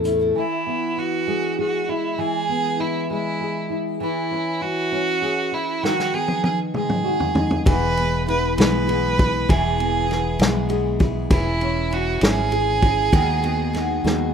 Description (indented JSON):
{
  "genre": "six-eight pop ballad",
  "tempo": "66 BPM (dotted quarters)",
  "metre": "6/8",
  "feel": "straight",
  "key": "E major",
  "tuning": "A4 = 440 Hz",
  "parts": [
    { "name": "nylon-string guitar", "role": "accompaniment", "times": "0.0-14.3 s", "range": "A2 to A4", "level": "-24 LUFS", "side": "left 1 dB", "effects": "double-tracked left and right" },
    { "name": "picked steel-string acoustic guitar", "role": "arpeggios", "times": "0.0-0.4, 7.7-14.3 s", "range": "D#3 to A4", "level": "-32 LUFS", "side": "left 6 dB", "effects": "digital delay" },
    { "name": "mellow fretless electric bass", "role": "bass", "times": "0.0-0.3, 7.7-14.3 s", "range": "E1 to E2", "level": "-24 LUFS", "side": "equal", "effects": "none" },
    { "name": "unplugged drum kit", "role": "drums", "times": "0.0-0.2, 5.8-14.2 s", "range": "hi-hat, kick drum, ride cymbal, snare drum, toms", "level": "-21 LUFS", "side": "equal", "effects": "none" },
    { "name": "rich violin", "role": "melody", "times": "0.4-14.3 s", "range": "E4 to B4", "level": "-24 LUFS", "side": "right 4 dB", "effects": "digital delay" }
  ],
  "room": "light reverb",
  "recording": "rough home demo mix",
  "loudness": "-19 LUFS",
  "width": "side -7 dB against mid",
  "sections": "0.4-14.3 A section",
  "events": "drum fill 5.8-7.7, 14.0",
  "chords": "0.4 E; 4.0 C#m/E; 5.8 G#m7/D#; 7.7 E; 11.3 C#m/E; 13.1 G#m7/D#"
}